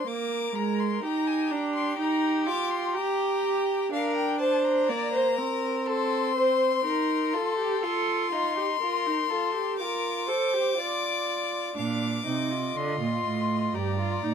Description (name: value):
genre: classical, baroque-style fugue for string quartet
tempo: 61 BPM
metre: 4/4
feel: straight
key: unclear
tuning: A4 = 440 Hz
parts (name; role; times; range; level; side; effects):
- clear violin; melody; 0.0-14.3 s; F5 to D6; -31 LUFS; left 9 dB; none
- rich violin; second line; 0.0-14.3 s; Eb4 to F5; -29 LUFS; left 1 dB; none
- rich viola; accompaniment; 0.0-14.3 s; Ab3 to A4; -29 LUFS; right 3 dB; none
- rich cello; bass; 11.8-14.3 s; G2 to D3; -28 LUFS; right 4 dB; none
room: light reverb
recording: dark, warm production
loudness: -24 LUFS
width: side -7 dB against mid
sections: 0.0-11.8 A section; 11.8-14.3 B section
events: none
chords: 0.1 Bb7; 2.0 Eb; 3.9 Bb/D; 5.9 Adim/C; 7.8 F7; 9.8 Bb/F; 11.8 Bb; 13.7 Gm